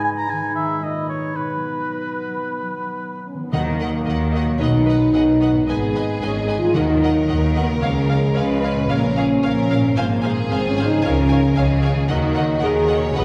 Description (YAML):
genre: cinematic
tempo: 112 BPM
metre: 4/4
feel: straight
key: Eb minor from 3.5 s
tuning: A4 = 440 Hz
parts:
  - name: mellow clarinet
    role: second line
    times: 0.0-3.2 s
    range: D#4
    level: -33 LUFS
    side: equal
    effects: none
  - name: mellow large flute ensemble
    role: second line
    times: 0.0-3.2 s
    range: B5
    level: -34 LUFS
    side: equal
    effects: none
  - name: warm oboe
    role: second line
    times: 0.0-3.3 s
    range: B4 to A#5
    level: -27 LUFS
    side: equal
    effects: none
  - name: mellow French horn section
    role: sustained chords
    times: 0.0-13.2 s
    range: A#2 to Ab4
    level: -24 LUFS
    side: equal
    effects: none
  - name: concert harp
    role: arpeggios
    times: 0.0-13.2 s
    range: G#2 to Db5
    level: -32 LUFS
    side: equal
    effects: none
  - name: warm symphonic violin section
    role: melody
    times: 3.5-13.2 s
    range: F5 to Ab5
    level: -35 LUFS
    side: equal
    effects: none
  - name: warm chamber viola section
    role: accompaniment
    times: 3.5-13.2 s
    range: Bb4 to F5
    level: -32 LUFS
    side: equal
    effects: none
  - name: rich symphonic double bass section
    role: bass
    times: 3.5-13.2 s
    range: Ab1 to Eb2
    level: -25 LUFS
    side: equal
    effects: none
  - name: warm symphonic cello section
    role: bass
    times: 3.5-13.2 s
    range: Ab2 to Eb3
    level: -26 LUFS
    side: equal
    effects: none
  - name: timpani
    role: percussion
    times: 3.5-7.5 s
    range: Eb3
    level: -29 LUFS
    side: equal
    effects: none
  - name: warm trombone section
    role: sustained chords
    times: 3.6-13.2 s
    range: Eb3 to Db4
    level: -31 LUFS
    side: equal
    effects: none
  - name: warm symphonic violin section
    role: second line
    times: 4.6-13.2 s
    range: F#4 to Db5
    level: -31 LUFS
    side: equal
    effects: none
room: wet scoring stage reverb, RT60 1.6 s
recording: heard from further back in the room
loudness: -19 LUFS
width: mono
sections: 0.0-3.5 A section; 3.5-13.2 B section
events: none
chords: 0.0 G#m; 1.4 B; 3.5 Ebm; 4.6 B; 5.7 Abm; 6.8 Ebm; 7.8 Db; 8.9 Bbm; 10.0 Ab6; 11.0 Db; 12.1 Ebm